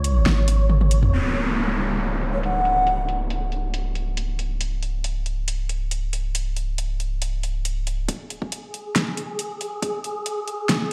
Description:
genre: deep dubstep.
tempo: 138 BPM.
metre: 4/4.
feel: swing 53% on 16ths, half-time.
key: unclear.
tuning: A4 = 440 Hz.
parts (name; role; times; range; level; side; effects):
soft dub sub bass; bass; 0.0-8.1 s; C#1 to C#2; -26 LUFS; equal; none.
deep house drum kit; drums; 0.0-10.8 s; hi-hat, snare drum, toms; -27 LUFS; equal; low-pass filter on hats, low-pass filter on snare, low-pass filter on toms.
wind-like tuned noise texture; texture; 0.0-1.1, 8.3-10.9 s; G#4 to C#5; -34 LUFS; equal; built-in reverb.
downlifter; sound effects; 1.1-4.6 s; none; -29 LUFS; equal; none.
breathy bright low ney; melody; 2.3-3.0 s; C#5 to F#5; -25 LUFS; equal; dub echo.
electronic kick drum; drums; 8.1-9.9 s; none; -32 LUFS; equal; high-pass filter on kick.
room: moderate digital room reverb, RT60 0.9 s, digital ambience.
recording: played on a big sound system in a bare room, stone room reverb.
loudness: -24 LUFS.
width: mono.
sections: 0.0-1.1 A section; 1.1-8.1 B section; 8.1-10.9 C section.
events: drop 0.0-1.1; kick drops out 0.7-1.1; drum fill 0.7-1.1; filter sweep on drum 1.1-8.1; build-up 8.1-10.9; filter sweep 8.1-10.9.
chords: 0.0 C#5; 1.1 N.C..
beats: 0.26 0.69 | 1.13 1.56 2.00 2.43 | 2.87 3.30 3.74 4.17 | 4.61 5.04 5.48 5.91 | 6.35 6.78 7.22 7.65 | 8.09 8.52 8.96 9.39 | 9.82 10.26 10.70.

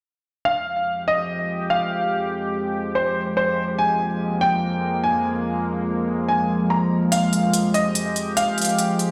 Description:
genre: heavy wobble dubstep.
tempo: 144 BPM.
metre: 4/4.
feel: swing 55% on 16ths, half-time.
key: F minor.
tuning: A4 = 440 Hz.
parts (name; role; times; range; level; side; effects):
warm baby grand piano; melody; 0.5-8.9 s; C5 to Bb5; -24 LUFS; equal; digital delay.
evolving wavetable pad; sustained chords; 0.9-9.1 s; F2 to G4; -25 LUFS; equal; chorus, built-in reverb.
electronic hi-hat; drums; 7.1-9.1 s; none; -28 LUFS; equal; none.
room: moderate plate reverb, RT60 1.6 s.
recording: played on a big sound system in a bare room, stone room reverb.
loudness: -22 LUFS.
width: mono.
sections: 0.5-9.1 A section.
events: none.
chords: 0.5 Fmadd9.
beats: | 0.45 0.87 1.29 1.70 | 2.12 2.54 2.95 3.37 | 3.79 4.20 4.62 5.04 | 5.45 5.87 6.29 6.70 | 7.12 7.54 7.95 8.37 | 8.79.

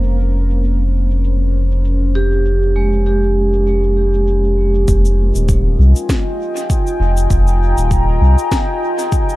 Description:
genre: ambient dub.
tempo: 99 BPM.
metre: 4/4.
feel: swing 56% on 16ths.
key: F minor.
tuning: A4 = 443 Hz.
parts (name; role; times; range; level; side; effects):
deep dark ambient pad; sustained chords; 0.0-9.4 s; Db4 to Bb5; -22 LUFS; left 2 dB; chorus, built-in reverb.
vibraphone with medium hard mallets; arpeggios; 0.0-5.5 s; Ab3 to G4; -20 LUFS; right 2 dB; tape echo.
round analog bass; bass; 0.0-8.4 s; Eb1 to C2; -14 LUFS; equal; none.
electronic cabasa and snare drum; drums; 0.0-9.4 s; none; -26 LUFS; equal; overdrive, low-pass filter on perc, low-pass filter on snare, dub echo.
bubbling stepped-filter texture; texture; 0.0-4.9 s; Bb3 to Bb4; -32 LUFS; right 4 dB; chorus, built-in reverb.
electronic kick drum; drums; 4.9-9.3 s; none; -16 LUFS; equal; none.
room: light reverb, digital ambience.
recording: echo-heavy mix.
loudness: -12 LUFS.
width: side -17 dB against mid.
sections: 0.0-4.9 A section; 4.9-9.4 B section.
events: filter sweep on ambient pad 0.0-4.9; filter sweep on vibraphone 0.0-4.9.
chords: 0.0 Bbmadd9/F; 4.9 Fm11.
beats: | 0.03 0.64 1.24 1.85 | 2.46 3.06 3.67 4.27 | 4.88 5.49 6.09 6.70 | 7.30 7.91 8.52 9.12.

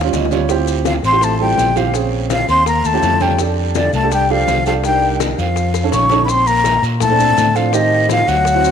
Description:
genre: Afro-Cuban jazz.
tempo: 166 BPM.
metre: 4/4.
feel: straight.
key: unclear.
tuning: A4 = 442 Hz.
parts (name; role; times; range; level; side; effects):
warm upright piano; accompaniment; 0.0-8.7 s; G3 to F5; -20 LUFS; right 10 dB; none.
fingered electric bass; bass; 0.0-8.7 s; A1 to Bb2; -19 LUFS; equal; none.
bongos; percussion; 0.0-8.6 s; none; -28 LUFS; left 12 dB; none.
congas; percussion; 0.1-8.7 s; none; -26 LUFS; left 10 dB; none.
guiro; percussion; 0.1-8.7 s; none; -31 LUFS; right 13 dB; none.
maracas; percussion; 0.1-8.7 s; none; -31 LUFS; left 11 dB; none.
breathy mellow silver concert flute; melody; 0.9-8.7 s; D5 to C#6; -15 LUFS; left 1 dB; none.
breathy trombone; second line; 0.9-8.7 s; D3 to C#4; -23 LUFS; left 9 dB; none.
room: moderate echo chamber reverb, RT60 2.2 s.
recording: 1960s-style stereo with parts hard left and right.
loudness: -12 LUFS.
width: side -7 dB against mid.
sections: 0.0-6.3 A section; 6.3-8.7 B section.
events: drum fill 0.0-0.5, 5.7-6.3; upright piano fill 0.0-0.5.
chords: 0.5 Dm11; 1.9 Bbm7; 2.7 Eb9; 3.4 F69; 4.8 Cm7; 5.6 Faug7; 6.3 Bbmaj7; 7.7 Am7b5.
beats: 0.13 | 0.50 0.86 1.22 1.58 | 1.94 2.31 2.67 3.03 | 3.39 3.75 4.12 4.48 | 4.84 5.20 5.57 5.93 | 6.29 6.65 7.01 7.37 | 7.74 8.10 8.46.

